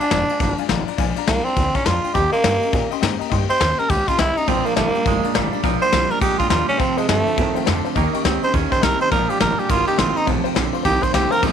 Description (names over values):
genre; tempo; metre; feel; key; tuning
rockabilly; 207 BPM; 4/4; swing 63% on 8ths; Bb mixolydian; A4 = 440 Hz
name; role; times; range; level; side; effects
growling tenor saxophone; melody; 0.0-11.4 s; Ab3 to C5; -20 LUFS; right 2 dB; none
honky-tonk upright piano; accompaniment; 0.0-11.5 s; D3 to Db6; -29 LUFS; left 13 dB; none
picked steel-string acoustic guitar; accompaniment; 0.0-11.5 s; F2 to G4; -28 LUFS; left 14 dB; none
upright bass; bass; 0.0-11.5 s; F1 to Bb2; -24 LUFS; right 1 dB; none
soft brush drum kit; drums; 0.0-11.5 s; crash cymbal, kick drum, ride cymbal, snare drum; -23 LUFS; left 3 dB; none
clean electric guitar; riff; 4.5-11.5 s; F2 to Db4; -24 LUFS; right 18 dB; none
room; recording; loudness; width
light reverb, small room ambience; 1960s-style stereo with parts hard left and right; -16 LUFS; side -8 dB against mid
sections
0.0-11.4 A section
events
none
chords
0.0 Bb7; 2.2 Eb7; 4.5 Bb7; 6.8 F7; 8.0 Eb7; 9.1 Bb7; 9.7 Eb7; 10.3 F7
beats
0.11 0.40 0.69 | 0.99 1.28 1.57 1.86 | 2.15 2.44 2.73 3.02 | 3.31 3.61 3.90 4.19 | 4.48 4.77 5.06 5.35 | 5.64 5.93 6.22 6.51 | 6.80 7.09 7.38 7.67 | 7.96 8.25 8.54 8.82 | 9.12 9.40 9.70 9.98 | 10.27 10.56 10.85 11.14 | 11.43